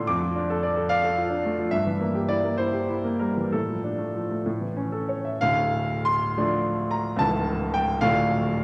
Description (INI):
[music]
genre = classical, romantic character piece for solo piano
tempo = 59-75 BPM (dotted quarters)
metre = 6/8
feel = rubato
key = D minor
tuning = A4 = 440 Hz
[part]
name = clear concert grand piano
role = solo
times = 0.0-8.6 s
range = C#1 to D6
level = -25 LUFS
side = equal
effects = none
[sound]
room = wet concert hall reverb, RT60 2.3 s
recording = none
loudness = -25 LUFS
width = mono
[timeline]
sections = 0.0-5.4 A section; 5.4-8.6 B section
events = none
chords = 0.1 Dm/F; 1.7 Edim/G; 3.5 Dm/A; 4.5 A; 5.4 Dm; 7.2 A/C#; 8.0 Dm